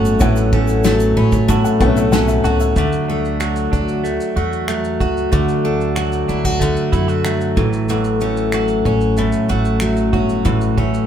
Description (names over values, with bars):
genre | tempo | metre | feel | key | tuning
acoustic pop | 94 BPM | 4/4 | straight | D major | A4 = 440 Hz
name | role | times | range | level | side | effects
felt-muted upright piano | accompaniment | 0.0-2.9 s | B3 to B5 | -22 LUFS | left 2 dB | none
picked steel-string acoustic guitar | accompaniment | 0.0-11.1 s | A2 to F#4 | -18 LUFS | left 3 dB | none
direct-recorded clean electric guitar | arpeggios | 0.0-11.1 s | E3 to F#4 | -22 LUFS | right 7 dB | none
upright bass | bass | 0.0-11.1 s | G1 to F#2 | -20 LUFS | right 1 dB | none
natural country drum kit | drums | 0.1-11.1 s | finger snaps, kick drum, shaker, snare drum | -22 LUFS | equal | none
tube shaker | percussion | 0.1-2.8 s | none | -37 LUFS | right 6 dB | none
room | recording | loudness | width
moderate studio reverb, RT60 0.8 s | heard from further back in the room | -14 LUFS | side -9 dB against mid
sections
0.0-2.8 A section; 2.8-11.1 B section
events
felt piano fill 0.8-2.8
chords
0.0 A6; 2.8 D; 7.6 A6